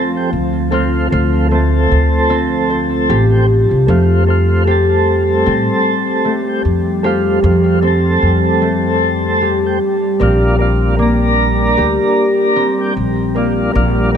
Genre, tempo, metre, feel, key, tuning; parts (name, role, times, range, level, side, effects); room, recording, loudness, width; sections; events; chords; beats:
trip hop; 76 BPM; 4/4; swing 55% on 16ths; A4 = 440 Hz
tonewheel organ; accompaniment; 0.0-14.2 s; A3 to Bb4; -17 LUFS; right 1 dB; slow rotary speaker, tremolo, vintage 12-bit sampler grit, tape echo
deep dark ambient pad; sustained chords; 0.0-14.2 s; F3 to G4; -21 LUFS; left 1 dB; chorus, built-in reverb
concert harp; arpeggios; 0.0-14.2 s; A3 to C5; -18 LUFS; equal; tape echo
upright bass; bass; 0.3-14.2 s; A1 to A2; -15 LUFS; equal; tube saturation
moderate echo chamber reverb, RT60 2.0 s; dark, warm production; -11 LUFS; side -8 dB against mid
0.0-14.2 A section
0.0 Dm7; 3.9 F; 10.2 Bb
| 0.72 1.51 2.30 3.09 | 3.88 4.67 5.46 6.25 | 7.04 7.83 8.62 9.41 | 10.20 10.99 11.78 12.57 | 13.36 14.15